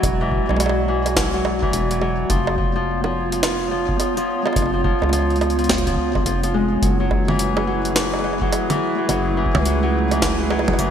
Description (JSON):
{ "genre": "IDM", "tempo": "106 BPM", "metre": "4/4", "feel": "swing 62% on 16ths", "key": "F# minor", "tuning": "A4 = 441 Hz", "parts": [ { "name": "warbly tape-like pad", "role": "sustained chords", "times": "0.0-10.9 s", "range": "G#3 to D5", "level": "-24 LUFS", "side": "right 2 dB", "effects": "chorus, built-in reverb" }, { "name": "Celtic harp", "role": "arpeggios", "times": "0.0-10.9 s", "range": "E3 to G#3", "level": "-23 LUFS", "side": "left 3 dB", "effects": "ping-pong delay" }, { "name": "deep acid bass", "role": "bass", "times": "0.0-10.9 s", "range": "E1 to C#2", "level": "-23 LUFS", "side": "equal", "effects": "tube saturation" }, { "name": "electronic kick drum", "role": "drums", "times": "0.0-10.8 s", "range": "none", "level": "-25 LUFS", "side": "equal", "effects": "small room reverb" }, { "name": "jungle sampler-style drum kit", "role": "drums", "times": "0.0-10.9 s", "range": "bongos, hi-hat, snare drum, toms", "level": "-24 LUFS", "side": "right 2 dB", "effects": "small room reverb, gated reverb" } ], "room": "moderate lush hall reverb, RT60 2.3 s", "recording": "bright 1980s-style digital production", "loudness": "-17 LUFS", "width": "side -8 dB against mid", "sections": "0.0-10.9 A section", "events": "none", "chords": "0.0 E9; 2.3 C#7/E#; 6.8 F#m11" }